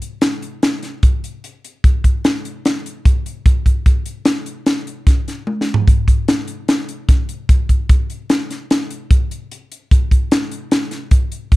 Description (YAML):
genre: rock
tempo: 149 BPM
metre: 5/4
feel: straight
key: none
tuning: none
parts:
  - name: crisp fusion drum kit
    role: drums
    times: 0.0-11.6 s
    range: hi-hat, kick drum, snare drum, toms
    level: -14 LUFS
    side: equal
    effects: none
room: little or no reverb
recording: dark, warm production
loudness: -14 LUFS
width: side -19 dB against mid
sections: 0.0-11.6 A section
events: drum fill 5.5-5.9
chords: none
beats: 0.23 0.63 1.04 1.44 | 1.84 2.25 2.65 3.05 3.46 | 3.86 4.26 4.67 5.07 5.47 | 5.88 6.28 6.68 7.09 7.49 | 7.89 8.30 8.70 9.10 9.51 | 9.91 10.31 10.71 11.12 11.52